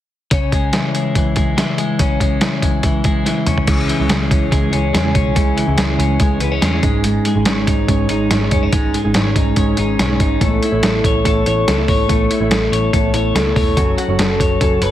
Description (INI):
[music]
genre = jangly indie pop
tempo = 143 BPM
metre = 4/4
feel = straight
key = C# minor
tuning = A4 = 439 Hz
[part]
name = twelve-string electric guitar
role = arpeggios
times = 0.3-14.9 s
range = G#2 to C#5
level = -18 LUFS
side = left 3 dB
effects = slapback echo
[part]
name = lo-fi sampler-style drum kit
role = drums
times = 0.3-14.9 s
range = crash cymbal, hi-hat, kick drum, snare drum, toms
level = -17 LUFS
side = equal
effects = overdrive
[part]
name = mellow electric guitar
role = accompaniment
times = 3.7-14.9 s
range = C#3 to C#5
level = -21 LUFS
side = right 5 dB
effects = spring reverb
[part]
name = vintage muted picked electric bass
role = bass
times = 3.7-14.9 s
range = E1 to E2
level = -20 LUFS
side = equal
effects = none
[sound]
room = moderate large studio reverb, RT60 1.4 s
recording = heavily compressed radio sound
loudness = -13 LUFS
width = side -12 dB against mid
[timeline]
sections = 0.3-3.7 A section; 3.7-14.9 B section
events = drum fill 3.3-3.7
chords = 0.3 C#m; 3.5 N.C.; 3.7 C#m; 6.8 G#sus4; 10.4 Aadd9; 13.8 F#m